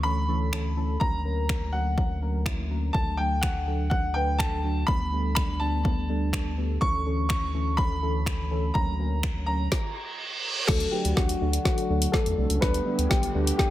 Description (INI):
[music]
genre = dance-pop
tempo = 124 BPM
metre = 4/4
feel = straight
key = D major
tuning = A4 = 440 Hz
[part]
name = clear concert grand piano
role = melody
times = 0.0-13.7 s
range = F#4 to C#6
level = -30 LUFS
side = left 1 dB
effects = low-pass filter, digital delay
[part]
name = deep mellow chord stab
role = accompaniment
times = 0.0-13.7 s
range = E3 to B4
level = -32 LUFS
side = right 1 dB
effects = chorus, phaser, sidechain pumping, low-pass filter
[part]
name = round analog bass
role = bass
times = 0.0-13.5 s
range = B1 to E2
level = -28 LUFS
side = equal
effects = sidechain pumping
[part]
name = deep house drum kit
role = drums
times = 0.5-13.7 s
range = crash cymbal, finger snaps, hi-hat, kick drum, snare drum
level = -26 LUFS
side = equal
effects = soft clipping on snare
[part]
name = reverse cymbal and riser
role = sound effects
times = 9.9-13.7 s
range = none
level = -33 LUFS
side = right 4 dB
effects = none
[part]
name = warm analog pad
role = sustained chords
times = 10.7-13.7 s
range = D3 to G4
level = -35 LUFS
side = equal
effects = chorus, sidechain pumping, low-pass filter
[sound]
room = light reverb, digital ambience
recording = dense, heavily limited modern master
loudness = -24 LUFS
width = side -14 dB against mid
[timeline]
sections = 0.0-10.7 A section; 10.7-13.7 B section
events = stop 9.7-10.7; reverse cymbal 9.9-10.7; build-up 10.7-13.7; drum fill 10.7-13.7; riser 10.7-13.7; filter sweep 10.7-13.7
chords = 0.0 A/D; 1.0 F#/D; 2.9 D; 4.9 Gadd9/D; 6.8 A/D; 8.8 F#/D; 10.7 D; 12.6 Gadd9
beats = 0.04 0.53 | 1.01 1.49 1.98 2.46 | 2.95 3.43 3.91 4.40 | 4.88 5.37 5.85 6.33 | 6.82 7.30 7.79 8.27 | 8.75 9.24 9.72 10.20 | 10.69 11.17 11.66 12.14 | 12.62 13.11 13.59